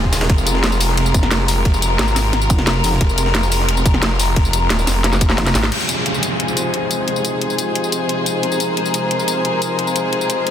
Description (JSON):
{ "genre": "dark technical drum and bass", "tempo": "177 BPM", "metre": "4/4", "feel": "straight", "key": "F minor", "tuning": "A4 = 440 Hz", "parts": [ { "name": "rich studio string section", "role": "sustained chords", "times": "0.0-10.5 s", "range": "C3 to Bb4", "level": "-21 LUFS", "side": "left 1 dB", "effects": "sidechain pumping, low-pass filter" }, { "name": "snarling distorted saw bass", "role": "bass", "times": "0.0-5.7 s", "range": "Eb1 to Ab1", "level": "-18 LUFS", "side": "equal", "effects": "distortion" }, { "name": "electronic kick drum", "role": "drums", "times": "0.0-5.3 s", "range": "none", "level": "-16 LUFS", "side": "equal", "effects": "overdrive" }, { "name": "breakbeat sampler-style drum kit", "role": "drums", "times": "0.1-5.7 s", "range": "hi-hat, ride cymbal, snare drum", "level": "-28 LUFS", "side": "right 2 dB", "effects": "high-pass filter on cymbals, high-pass filter on snare, high-pass filter on hats" }, { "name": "drum and bass drum kit", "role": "drums", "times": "0.1-10.5 s", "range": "crash cymbal, hi-hat, snare drum, tambourine", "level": "-20 LUFS", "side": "left 1 dB", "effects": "overdrive" }, { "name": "metallic wobble bass", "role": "bass", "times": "2.5-3.0, 5.4-5.5 s", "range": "F1", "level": "-18 LUFS", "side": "equal", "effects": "chorus" }, { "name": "downlifter", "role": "sound effects", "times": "5.7-8.4 s", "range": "none", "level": "-24 LUFS", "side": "equal", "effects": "none" }, { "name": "warm chamber string section", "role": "texture", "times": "5.7-10.5 s", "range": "F3 to C5", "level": "-20 LUFS", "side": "left 2 dB", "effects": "sidechain pumping" } ], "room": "moderate lush hall reverb, RT60 2.2 s", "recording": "dense, heavily limited modern master", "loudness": "-15 LUFS", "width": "side -9 dB against mid", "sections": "0.0-5.7 A section; 5.7-10.5 B section", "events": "drop 0.0-5.7; drum fill 5.0-5.7; filter sweep on string section 5.7-10.5", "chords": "0.0 Fm", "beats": "| 0.30 0.64 0.97 1.31 | 1.65 1.99 2.33 2.67 | 3.01 3.35 3.69 4.03 | 4.36 4.70 5.04 5.38 | 5.72 6.06 6.40 6.74 | 7.08 7.42 7.75 8.09 | 8.43 8.77 9.11 9.45 | 9.79 10.13 10.47" }